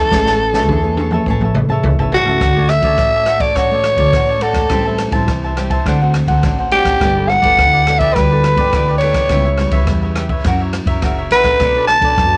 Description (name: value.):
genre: samba and choro.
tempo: 104 BPM.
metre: 4/4.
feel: straight.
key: D major.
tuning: A4 = 440 Hz.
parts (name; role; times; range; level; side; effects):
growling soprano saxophone; melody; 0.0-12.4 s; F#4 to A5; -16 LUFS; equal; cassette tape, plate reverb.
cavaquinho; accompaniment; 0.0-12.4 s; D4 to A5; -26 LUFS; equal; cassette tape, plate reverb.
nylon-string guitar; accompaniment; 0.0-12.4 s; A2 to C#5; -26 LUFS; equal; cassette tape.
upright bass; bass; 0.0-12.4 s; F#1 to F#2; -21 LUFS; equal; none.
open jazz drum kit; drums; 0.1-12.3 s; kick drum, ride cymbal, rim click, snare drum, toms; -21 LUFS; equal; cassette tape.
room: moderate booth ambience, RT60 0.2 s.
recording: home recording on cassette.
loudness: -14 LUFS.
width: mono.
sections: 0.0-2.4 A section; 2.4-12.4 B section.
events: drum fill 0.1-2.4.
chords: 0.0 Amaj9; 2.4 Dmaj7; 4.7 Am7; 5.9 D7; 7.0 G69; 9.3 C#m7b5; 10.5 F#7; 11.6 Bm9.